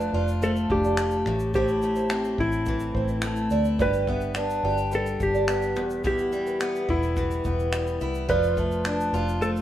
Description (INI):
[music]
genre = acoustic pop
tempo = 107 BPM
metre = 4/4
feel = straight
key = A minor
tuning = A4 = 441 Hz
[part]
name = clean lap steel guitar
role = melody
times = 0.0-9.5 s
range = E4 to B4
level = -27 LUFS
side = equal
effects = none
[part]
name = picked steel-string acoustic guitar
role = accompaniment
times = 0.0-9.6 s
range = E2 to G4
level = -28 LUFS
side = left 1 dB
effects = none
[part]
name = nylon-string guitar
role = arpeggios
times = 0.0-9.5 s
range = G4 to E5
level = -31 LUFS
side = right 6 dB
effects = none
[part]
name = vintage muted fingered electric bass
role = bass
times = 0.0-9.6 s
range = E1 to D2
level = -29 LUFS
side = equal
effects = none
[part]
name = vintage brush drum kit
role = drums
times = 0.0-9.6 s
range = finger snaps, kick drum, shaker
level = -33 LUFS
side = equal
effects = none
[sound]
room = moderate stone room reverb, RT60 1.1 s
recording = band playing live in one room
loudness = -22 LUFS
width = side -12 dB against mid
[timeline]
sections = 0.0-9.6 A section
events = none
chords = 0.0 Dm/F; 1.3 Am; 3.8 G; 5.8 Em; 8.3 Dm/F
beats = 0.42 0.98 | 1.54 2.10 2.67 3.23 | 3.79 4.35 4.92 5.48 | 6.04 6.60 7.17 7.73 | 8.29 8.85 9.41